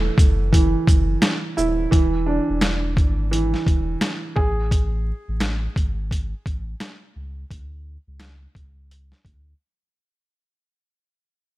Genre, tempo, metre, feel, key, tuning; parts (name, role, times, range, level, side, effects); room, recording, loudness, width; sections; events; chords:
hip hop, boom-bap hip-hop; 86 BPM; 4/4; swing 62% on 16ths; A4 = 437 Hz
dark upright piano; accompaniment; 0.0-7.5 s; E3 to G#4; -24 LUFS; right 3 dB; high-pass filter, low-pass filter
warm sub bass; bass; 0.0-9.5 s; D#1 to D2; -25 LUFS; equal
boom bap sampler-style drum kit; drums; 0.2-9.5 s; hi-hat, kick drum, shaker, snare drum; -19 LUFS; equal
little or no reverb; vinyl crackle; -18 LUFS; side -17 dB against mid
0.0-10.3 A section
fade-out 0.0-10.3; break 4.7-10.3
0.0 F#m7; 1.9 E7; 4.4 Amaj7(no3); 7.5 N.C.